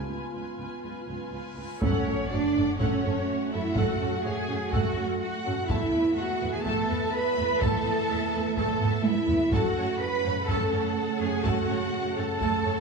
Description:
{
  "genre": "cinematic, epic orchestral film score",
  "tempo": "125 BPM",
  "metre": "4/4",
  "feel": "straight",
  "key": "F# minor",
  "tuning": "A4 = 440 Hz",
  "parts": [
    { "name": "warm symphonic violin section", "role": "melody", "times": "0.0-12.7 s", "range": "A4 to A5", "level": "-40 LUFS", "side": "left 4 dB", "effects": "none" },
    { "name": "warm symphonic violin section", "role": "second line", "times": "0.0-12.8 s", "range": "B4 to B5", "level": "-35 LUFS", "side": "left 1 dB", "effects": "none" },
    { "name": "warm symphonic viola section", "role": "accompaniment", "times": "0.0-12.7 s", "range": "A3 to A4", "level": "-34 LUFS", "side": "right 1 dB", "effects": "none" },
    { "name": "mellow French horn section", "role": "sustained chords", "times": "0.0-12.8 s", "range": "B3 to B4", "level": "-34 LUFS", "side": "left 1 dB", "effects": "none" },
    { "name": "warm studio double bass section", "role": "bass", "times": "0.0-12.7 s", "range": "E2 to F#2", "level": "-33 LUFS", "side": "right 3 dB", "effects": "none" },
    { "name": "reverse cymbal and sub drop", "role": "sound effects", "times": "1.7-3.8 s", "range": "none", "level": "-37 LUFS", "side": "equal", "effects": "none" },
    { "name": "dark symphonic cello section", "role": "bass", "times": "0.1-12.8 s", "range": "C#2 to B4", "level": "-31 LUFS", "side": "right 4 dB", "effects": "none" },
    { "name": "mellow trombone section", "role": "sustained chords", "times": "1.8-12.8 s", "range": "C#3 to A3", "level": "-35 LUFS", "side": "right 7 dB", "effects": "none" },
    { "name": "warm symphonic string section", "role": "sustained chords", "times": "1.8-12.8 s", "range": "A3 to F#5", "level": "-36 LUFS", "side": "equal", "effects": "none" },
    { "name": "taiko ensemble", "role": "drums", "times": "1.8-12.8 s", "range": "none", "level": "-31 LUFS", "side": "right 1 dB", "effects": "none" }
  ],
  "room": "wet scoring stage reverb, RT60 1.9 s",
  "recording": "small room reverb",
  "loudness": "-24 LUFS",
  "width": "side -4 dB against mid",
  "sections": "0.0-1.8 A section; 1.8-12.8 B section",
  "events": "reverse cymbal 1.7; impact 1.8-3.8; drum fill 8.8-9.5",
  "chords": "0.0 C#7; 1.8 F#m; 5.7 Esus4; 9.5 F#m",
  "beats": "0.35 0.84 1.33 | 1.82 2.31 2.79 3.27 | 3.76 4.24 4.72 5.21 | 5.69 6.17 6.65 7.13 | 7.61 8.09 8.56 9.04 | 9.52 10.00 10.48 10.96 | 11.44 11.92 12.40"
}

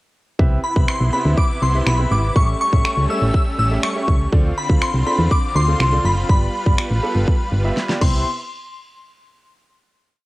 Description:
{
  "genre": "dance-pop",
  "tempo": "122 BPM",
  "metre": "4/4",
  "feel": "straight",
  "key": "C major",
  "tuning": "A4 = 440 Hz",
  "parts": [
    { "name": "warm concert grand piano", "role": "accompaniment", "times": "0.4-8.2 s", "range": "B3 to B5", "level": "-27 LUFS", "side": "right 2 dB", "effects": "sidechain pumping, cassette tape" },
    { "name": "supersaw chords", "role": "sustained chords", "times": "0.4-8.2 s", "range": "C3 to E5", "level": "-27 LUFS", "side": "equal", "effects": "sidechain pumping, cassette tape" },
    { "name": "solid FM bass", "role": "bass", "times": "0.4-8.2 s", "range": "F#1 to E2", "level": "-18 LUFS", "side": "equal", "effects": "sidechain pumping" },
    { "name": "pop drum kit", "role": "drums", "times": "0.4-8.1 s", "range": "crash cymbal, finger snaps, kick drum, snare drum", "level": "-18 LUFS", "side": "equal", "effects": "cassette tape" },
    { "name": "shimmering bell with halo", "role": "melody", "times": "0.6-8.2 s", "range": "B5 to E6", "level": "-22 LUFS", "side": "left 1 dB", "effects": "ensemble chorus, cassette tape, tape echo" }
  ],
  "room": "little or no reverb",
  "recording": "home recording on cassette",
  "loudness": "-15 LUFS",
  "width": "side -19 dB against mid",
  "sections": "0.4-8.3 verse; 8.3-10.2 final hit",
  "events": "grand piano fill 7.5-8.3; drum fill 7.8-8.3",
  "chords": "0.4 Cmaj7; 2.4 A7; 4.3 Dm7; 6.3 G7; 8.0 Cmaj7; 8.3 N.C.",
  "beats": "| 0.39 0.88 1.38 1.87 | 2.36 2.85 3.34 3.83 | 4.33 4.82 5.31 5.80 | 6.29 6.79 7.28 7.77"
}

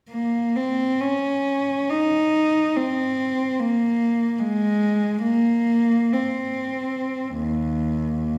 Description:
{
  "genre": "classical, free, expressive piece for unaccompanied cello",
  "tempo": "40-76 BPM",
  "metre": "4/4",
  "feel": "rubato",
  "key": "unclear",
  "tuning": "A4 = 439 Hz",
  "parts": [
    { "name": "warm cello", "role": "solo", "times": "0.1-8.4 s", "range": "Eb2 to Eb4", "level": "-22 LUFS", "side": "equal", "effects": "none" }
  ],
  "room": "wet recital hall reverb, RT60 1.5 s",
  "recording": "heard from further back in the room",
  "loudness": "-22 LUFS",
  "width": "mono",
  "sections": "0.1-7.4 A section",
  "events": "none",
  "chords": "none",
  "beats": "| 0.10 1.01 1.91 2.78 | 3.59 4.39 5.24 6.14 | 7.38"
}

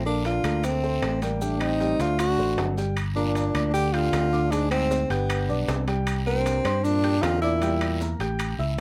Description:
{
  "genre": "Afro-Cuban jazz",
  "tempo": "155 BPM",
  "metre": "4/4",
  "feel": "straight",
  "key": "G minor",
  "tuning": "A4 = 441 Hz",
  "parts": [
    { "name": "breathy tenor saxophone", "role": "melody", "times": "0.0-8.2 s", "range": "Bb3 to G4", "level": "-28 LUFS", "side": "equal", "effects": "none" },
    { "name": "breathy trombone", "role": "second line", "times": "0.0-8.2 s", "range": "G2 to D4", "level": "-35 LUFS", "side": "equal", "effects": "none" },
    { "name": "fingered electric bass", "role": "bass", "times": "0.0-8.8 s", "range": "G1 to G2", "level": "-29 LUFS", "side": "equal", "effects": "none" },
    { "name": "warm upright piano", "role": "accompaniment", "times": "0.1-8.8 s", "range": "F#3 to G6", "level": "-34 LUFS", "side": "equal", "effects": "none" },
    { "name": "maracas", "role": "percussion", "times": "0.1-8.8 s", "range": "none", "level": "-48 LUFS", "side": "equal", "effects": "none" },
    { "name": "timbales", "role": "percussion", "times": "0.2-8.6 s", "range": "none", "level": "-37 LUFS", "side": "equal", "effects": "none" },
    { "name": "guiro", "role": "percussion", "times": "0.3-8.8 s", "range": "none", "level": "-45 LUFS", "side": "equal", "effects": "none" },
    { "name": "claves", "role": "percussion", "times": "0.4-8.6 s", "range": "none", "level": "-42 LUFS", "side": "equal", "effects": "none" }
  ],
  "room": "little or no reverb",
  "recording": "close, detailed microphones",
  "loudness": "-25 LUFS",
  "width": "mono",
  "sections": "0.0-3.0 A section; 3.0-8.8 B section",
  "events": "none",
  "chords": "0.0 Bbmaj9; 1.4 Am7b5; 2.2 D7; 3.0 Gm7; 4.5 Abmaj7#11; 5.3 G; 6.1 Csus2; 7.6 Edim",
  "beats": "0.25 0.64 1.02 | 1.41 1.80 2.19 2.58 | 2.97 3.35 3.74 4.13 | 4.52 4.91 5.29 5.68 | 6.07 6.46 6.84 7.23 | 7.62 8.01 8.39 8.78"
}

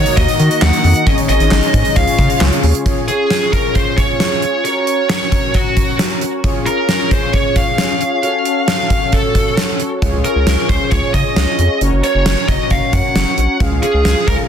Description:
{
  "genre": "synth-pop",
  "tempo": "134 BPM",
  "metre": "4/4",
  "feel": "straight",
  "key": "Db major",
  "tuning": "A4 = 440 Hz",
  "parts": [
    { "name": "high-gain lead guitar", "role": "melody", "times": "0.0-14.3 s", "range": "Gb4 to Gb5", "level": "-17 LUFS", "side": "equal", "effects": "distortion, digital delay" },
    { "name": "analog synth brass", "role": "accompaniment", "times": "0.0-14.5 s", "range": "Db4 to F5", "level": "-20 LUFS", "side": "left 1 dB", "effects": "chorus" },
    { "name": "brassy analog pad", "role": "sustained chords", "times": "0.0-2.8 s", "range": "Db3 to Gb4", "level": "-22 LUFS", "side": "left 1 dB", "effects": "chorus" },
    { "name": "round analog bass", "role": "bass", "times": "0.0-2.7, 10.0-14.4 s", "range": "Gb1 to Eb3", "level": "-15 LUFS", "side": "equal", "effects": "none" },
    { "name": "gated 80s drum kit", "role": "drums", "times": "0.1-14.4 s", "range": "handclaps, hi-hat, kick drum, snare drum", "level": "-16 LUFS", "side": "equal", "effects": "none" }
  ],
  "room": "moderate plate reverb, RT60 1.1 s, studio reverb",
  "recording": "dense, heavily limited modern master",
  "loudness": "-12 LUFS",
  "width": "side -8 dB against mid",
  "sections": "0.0-2.9 A section; 2.9-14.5 B section",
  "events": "none",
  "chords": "0.0 Ebm; 1.1 Absus4; 2.0 Db; 4.6 Gb; 6.4 Db; 8.2 Gbm; 10.0 Db; 11.8 Gb; 13.6 Db",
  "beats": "0.17 0.62 | 1.07 1.51 1.96 2.41 | 2.86 3.31 3.75 4.20 | 4.65 5.10 5.54 5.99 | 6.44 6.89 7.34 7.78 | 8.23 8.68 9.13 9.57 | 10.02 10.47 10.92 11.37 | 11.81 12.26 12.71 13.16 | 13.60 14.05"
}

